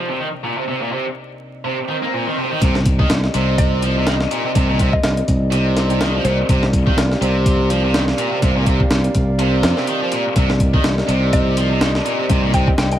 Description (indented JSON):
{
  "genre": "breakbeat, breaks",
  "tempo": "124 BPM",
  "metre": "4/4",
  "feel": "swing 56% on 16ths",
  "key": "C minor",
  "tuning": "A4 = 440 Hz",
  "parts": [
    { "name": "dark analog pad", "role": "sustained chords", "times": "0.0-13.0 s", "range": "C3 to F5", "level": "-24 LUFS", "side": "equal", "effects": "chorus, sidechain pumping" },
    { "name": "tight distorted guitar", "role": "riff", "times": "0.0-12.7 s", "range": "Bb2 to Bb3", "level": "-21 LUFS", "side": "right 1 dB", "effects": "distortion, low-pass filter, ping-pong delay" },
    { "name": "swell", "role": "sound effects", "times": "1.8-2.6 s", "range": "none", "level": "-28 LUFS", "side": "right 3 dB", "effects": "none" },
    { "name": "overdriven fingered electric bass", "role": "bass", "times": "2.6-12.9 s", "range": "C2 to F2", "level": "-18 LUFS", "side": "equal", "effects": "none" },
    { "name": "breakbeat sampler-style drum kit", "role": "drums", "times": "2.6-13.0 s", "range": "hi-hat, kick drum, snare drum", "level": "-18 LUFS", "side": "equal", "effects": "studio reverb" },
    { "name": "mallet-like synth pluck", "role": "melody", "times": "3.6-6.9, 11.3-13.0 s", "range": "C5 to G5", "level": "-26 LUFS", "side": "left 1 dB", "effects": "chorus, phaser, telephone sound, cassette tape, ping-pong delay" }
  ],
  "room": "light reverb",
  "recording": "vinyl crackle",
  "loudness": "-15 LUFS",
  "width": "side -11 dB against mid",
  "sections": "0.0-2.6 A section; 2.6-13.0 B section",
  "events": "swell 1.8-2.6; drop 2.6-13.0",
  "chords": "0.0 Cm7"
}